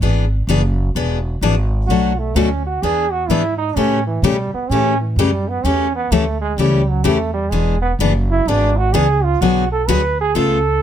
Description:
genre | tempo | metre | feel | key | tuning
acoustic string swing (jazz manouche) | 128 BPM | 4/4 | swing 64% on 8ths | E mixolydian | A4 = 440 Hz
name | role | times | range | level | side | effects
picked steel-string acoustic guitar | accompaniment | 0.0-10.6 s | B2 to A4 | -18 LUFS | left 5 dB | none
upright bass | bass | 0.0-10.8 s | E1 to B2 | -18 LUFS | equal | none
bright trombone | second line | 1.9-10.8 s | E3 to B4 | -19 LUFS | right 5 dB | none
room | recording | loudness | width
little or no reverb | close, detailed microphones | -15 LUFS | side -10 dB against mid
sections
0.0-10.8 A section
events
trombone solo 0.0-10.8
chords
0.0 E7; 1.9 Bm7; 2.8 E7; 3.8 A7; 7.5 E7; 9.4 G#m7b5

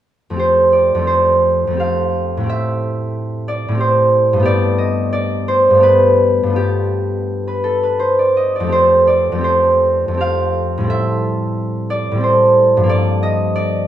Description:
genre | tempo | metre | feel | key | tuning
classical, solo harp piece | 77-94 BPM | 3/4 | rubato | unclear | A4 = 440 Hz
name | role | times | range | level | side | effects
concert harp | solo | 0.3-13.9 s | F2 to F5 | -13 LUFS | equal | none
room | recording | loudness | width
moderate recital hall reverb, RT60 1.3 s | minimal, uncompressed stereo recording | -13 LUFS | side -11 dB against mid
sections
0.4-13.9 A section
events
none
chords
0.4 Fadd9; 2.5 Am7; 4.5 Gadd9; 6.6 G9; 8.7 Fadd9; 10.9 Am7; 12.9 Gm9

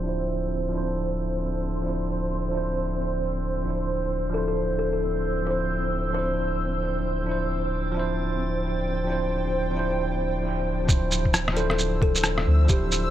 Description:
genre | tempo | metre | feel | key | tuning
future garage | 133 BPM | 4/4 | swing 61% on 16ths | D minor | A4 = 441 Hz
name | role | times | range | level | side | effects
bell-like tine electric piano | accompaniment | 0.0-13.1 s | F3 to E5 | -29 LUFS | right 2 dB | medium stereo tremolo, vintage 12-bit sampler grit, sidechain pumping, dub echo
granular cloud pad | sustained chords | 0.0-13.1 s | C5 to E6 | -32 LUFS | equal | built-in reverb, sidechain pumping
soft dub sub bass | bass | 0.0-13.1 s | D1 to D2 | -28 LUFS | equal | tube saturation, sidechain pumping
drifting glass-harmonics texture | texture | 0.0-10.9 s | C4 to D5 | -37 LUFS | right 3 dB | chorus, built-in reverb
kalimba | melody | 4.3-6.6, 11.6-12.9 s | G4 to C5 | -32 LUFS | left 4 dB | dub echo
electronic kick drum | drums | 10.9-12.8 s | none | -22 LUFS | equal | studio reverb
electronic shaker and rim click | drums | 10.9-13.0 s | none | -25 LUFS | equal | studio reverb
room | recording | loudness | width
light reverb | low-pass filter | -23 LUFS | side -12 dB against mid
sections
0.0-10.9 A section; 10.9-13.1 B section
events
filter sweep on ambient pad 0.0-10.9; filter sweep 0.0-10.9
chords
0.0 Dm9

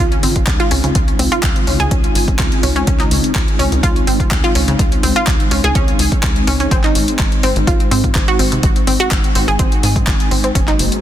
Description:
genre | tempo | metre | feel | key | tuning
progressive house | 125 BPM | 4/4 | straight | Db major | A4 = 438 Hz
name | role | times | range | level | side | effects
filtered supersaw swell | sustained chords | 0.0-11.0 s | Db3 to Gb4 | -21 LUFS | equal | sidechain pumping, low-pass filter
analog pluck | arpeggios | 0.0-10.8 s | C3 to Ab4 | -19 LUFS | right 1 dB | chorus, sidechain pumping, dub echo
tight sequencer bass | bass | 0.0-10.9 s | Gb1 to Ab2 | -20 LUFS | equal | sidechain pumping
deep house drum kit | drums | 0.1-11.0 s | handclaps, hi-hat | -21 LUFS | left 1 dB | none
electronic kick drum | drums | 0.4-10.7 s | none | -16 LUFS | equal | none
room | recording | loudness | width
light reverb, digital ambience | dense, heavily limited modern master | -12 LUFS | side -11 dB against mid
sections
0.0-11.0 A section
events
filter sweep on supersaw synth 0.0-11.0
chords
0.0 Dbmaj7; 6.7 Ab

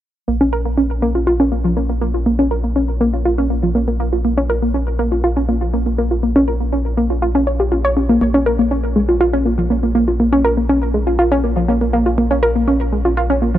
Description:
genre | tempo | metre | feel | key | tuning
techno | 121 BPM | 4/4 | straight | Bb minor | A4 = 443 Hz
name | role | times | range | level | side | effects
wide unison pluck | arpeggios | 0.3-13.6 s | F3 to Db5 | -15 LUFS | equal | tape echo
round analog bass | bass | 0.3-13.6 s | Bb1 | -20 LUFS | equal | none
room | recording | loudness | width
light reverb | dry, gritty hardware recording, transformer saturation | -14 LUFS | side -12 dB against mid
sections
0.3-13.6 A section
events
filter sweep on synth pluck 0.3-13.6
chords
0.3 Bbm

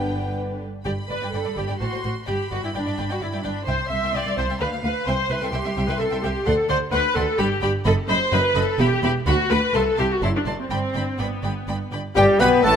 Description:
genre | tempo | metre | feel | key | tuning
quick classical-period movement for symphony orchestra | 128 BPM | 3/4 | straight | G major | A4 = 442 Hz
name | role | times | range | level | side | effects
rich studio violin section | melody | 0.0-12.8 s | F5 to C6 | -31 LUFS | left 1 dB | none
rich studio violin section | second line | 0.0-12.8 s | G4 to C6 | -31 LUFS | left 1 dB | none
warm clarinet | second line | 0.0-0.6, 12.2-12.8 s | D4 to B4 | -22 LUFS | left 3 dB | none
mellow bassoon | accompaniment | 0.0-0.6, 12.2-12.8 s | G3 to B3 | -24 LUFS | equal | none
rich studio viola section | accompaniment | 0.0-12.7 s | D3 to E5 | -23 LUFS | equal | none
mellow French horn section | sustained chords | 0.0-0.6, 12.2-12.8 s | G3 to D4 | -25 LUFS | left 5 dB | none
rich studio cello section | bass | 0.0-12.8 s | C2 to B2 | -28 LUFS | right 2 dB | none
rich studio double bass section | bass | 0.0-12.8 s | E1 to D2 | -27 LUFS | right 2 dB | none
concert flute | second line | 12.2-12.7 s | D5 to G5 | -25 LUFS | left 2 dB | none
warm oboe | second line | 12.2-12.7 s | G4 to B4 | -26 LUFS | left 2 dB | none
clear trumpet section | stabs | 12.2-12.8 s | G4 to B4 | -24 LUFS | equal | none
room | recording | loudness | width
moderate scoring stage reverb, RT60 1.8 s | none | -20 LUFS | side -8 dB against mid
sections
0.9-12.2 A section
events
none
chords
0.0 G; 1.8 F#dim/A; 2.3 G; 3.7 C; 4.6 Bdim/D; 5.1 C; 6.5 D7; 7.4 N.C.; 7.9 B/F#; 8.8 Em; 9.3 Bm; 9.7 Am; 10.2 D7/F#; 10.7 G

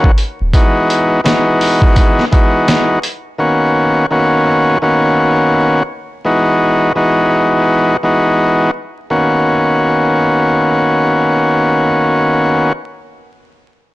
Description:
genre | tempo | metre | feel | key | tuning
hip hop, boom-bap hip-hop | 84 BPM | 4/4 | swing 60% on 16ths | B major | A4 = 440 Hz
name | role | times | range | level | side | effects
tonewheel organ | accompaniment | 0.0-12.7 s | D#3 to F#4 | -11 LUFS | equal | overdrive, cassette tape, plate reverb
dusty soul sampler-style drum kit | drums | 0.0-3.2 s | hi-hat, kick drum, snare drum | -12 LUFS | equal | none
soft dub sub bass | bass | 0.4-0.5 s | D#1 | -16 LUFS | equal | none
room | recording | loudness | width
light reverb | blown-out, overdriven recording, vinyl crackle, overdrive | -10 LUFS | side -18 dB against mid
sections
0.0-9.1 A section; 9.1-12.0 B section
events
none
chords
0.0 Bmaj7; 0.5 Emaj7; 3.4 Bmaj7; 6.2 Emaj7; 9.1 Bmaj7

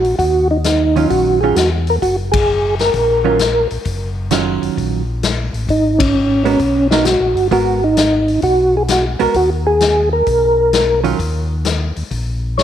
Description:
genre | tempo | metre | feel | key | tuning
soul jazz organ trio | 131 BPM | 4/4 | swing 68% on 8ths | Eb minor | A4 = 440 Hz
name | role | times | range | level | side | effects
percussive tonewheel organ | melody | 0.0-12.6 s | Db4 to Db5 | -14 LUFS | equal | slow rotary speaker, chorus vibrato
mellow tonewheel organ | bass | 0.0-12.6 s | Gb1 to Fb2 | -20 LUFS | left 1 dB | slow rotary speaker
swinging big-band drum kit | drums | 0.0-12.6 s | hi-hat, kick drum, ride cymbal, snare drum | -21 LUFS | left 5 dB | none
hollow-body jazz guitar | accompaniment | 1.0-11.2 s | Eb3 to Bb4 | -20 LUFS | right 10 dB | none
room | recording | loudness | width
light reverb | 1960s-style stereo | -13 LUFS | side -10 dB against mid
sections
0.0-12.6 A section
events
band accent 2.2, 5.9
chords
0.0 Ebm9; 5.7 Abm9; 11.2 Eb5

